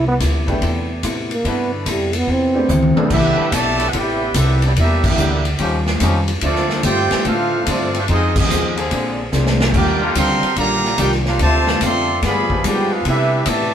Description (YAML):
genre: jazz, big band swing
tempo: 145 BPM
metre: 4/4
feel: swing 66% on 8ths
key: C major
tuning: A4 = 440 Hz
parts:
  - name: breathy trombone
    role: melody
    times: 0.0-3.1 s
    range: D3 to C4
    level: -19 LUFS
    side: right 2 dB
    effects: none
  - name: vintage hollow-body jazz guitar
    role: accompaniment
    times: 0.0-13.7 s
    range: Bb2 to A4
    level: -24 LUFS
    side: left 2 dB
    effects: none
  - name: upright bass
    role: bass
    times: 0.0-13.7 s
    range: A1 to C3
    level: -20 LUFS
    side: equal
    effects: none
  - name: swinging big-band drum kit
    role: drums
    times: 0.2-13.6 s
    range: crash cymbal, hi-hat, kick drum, ride cymbal, snare drum, toms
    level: -21 LUFS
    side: left 1 dB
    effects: none
  - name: warm upright piano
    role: accompaniment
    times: 0.5-3.1 s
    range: C3 to A4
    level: -23 LUFS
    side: right 1 dB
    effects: none
  - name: bright trombone section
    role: sustained chords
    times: 0.5-6.2, 8.8-13.0 s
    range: D3 to B4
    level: -26 LUFS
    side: left 2 dB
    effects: none
  - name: warm trumpet section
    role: melody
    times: 3.1-13.7 s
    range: A3 to C6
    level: -20 LUFS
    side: right 1 dB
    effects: none
  - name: clear trombone section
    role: second line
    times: 3.1-13.7 s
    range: B2 to G4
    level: -23 LUFS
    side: right 3 dB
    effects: none
room: moderate stone room reverb, RT60 1.0 s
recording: band playing live in one room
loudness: -15 LUFS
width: side -9 dB against mid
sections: 0.0-3.1 A section; 3.1-13.7 B section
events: trombone solo 0.0-3.1; drum fill 2.7-3.1, 9.3-9.7; band accent 5.0, 8.3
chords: 0.0 Cmaj13; 4.8 Em7b5; 5.6 Eb9; 6.4 Dm7; 8.1 Fm7; 8.9 Bb9; 9.7 Ebmaj9; 11.4 Dm7; 12.2 G7b9; 13.0 Cmaj13